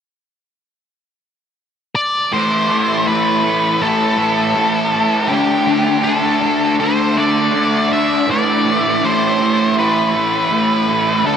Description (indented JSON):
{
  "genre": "rock",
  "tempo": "81 BPM",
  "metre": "4/4",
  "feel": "straight",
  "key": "A minor",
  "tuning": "A4 = 440 Hz",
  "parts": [
    { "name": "octave-fuzz lead guitar", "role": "melody", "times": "2.0-11.4 s", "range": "G4 to E5", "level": "-16 LUFS", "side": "left 1 dB", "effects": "distortion, analog delay" },
    { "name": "fuzz guitar", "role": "riff", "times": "2.3-11.4 s", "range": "A2 to D4", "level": "-15 LUFS", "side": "right 1 dB", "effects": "distortion, lush chorus" }
  ],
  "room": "wet huge ambient reverb, RT60 5.1 s",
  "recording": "dreamy mix soaked in reverb",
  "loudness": "-13 LUFS",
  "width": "side -8 dB against mid",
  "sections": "0.0-2.3 A section; 2.3-11.4 B section",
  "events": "none",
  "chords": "0.0 N.C.; 2.3 Am; 5.3 Dsus4; 8.3 Am"
}